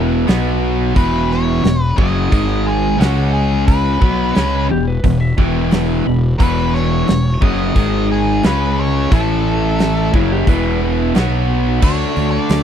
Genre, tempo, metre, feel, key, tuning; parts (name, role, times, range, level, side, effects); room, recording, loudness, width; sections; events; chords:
classic rock; 88 BPM; 4/4; straight; E major; A4 = 438 Hz
clean lap steel guitar; second line; 0.0-11.6 s; E4 to B5; -27 LUFS; left 4 dB
biting overdriven guitar; riff; 0.0-12.6 s; E2 to F#4; -19 LUFS; left 10 dB
biting overdriven guitar; riff; 0.0-12.6 s; E2 to D4; -20 LUFS; right 13 dB
fuzz fingered electric bass; bass; 0.0-12.6 s; E1 to D2; -19 LUFS; equal; overdrive
huge arena drum kit; drums; 0.3-12.6 s; crash cymbal, hi-hat, kick drum, snare drum; -16 LUFS; equal
octave-fuzz lead guitar; melody; 1.0-12.6 s; F#4 to D#5; -22 LUFS; left 2 dB; distortion
little or no reverb; dry, close 1970s-style studio recording; -13 LUFS; side -9 dB against mid
0.0-11.8 A section
0.3 B5; 1.0 E5; 2.3 G#5; 3.0 C#5; 4.0 E; 7.8 G#5; 8.4 C#5; 9.1 A5; 10.1 E5; 11.1 B5; 11.8 D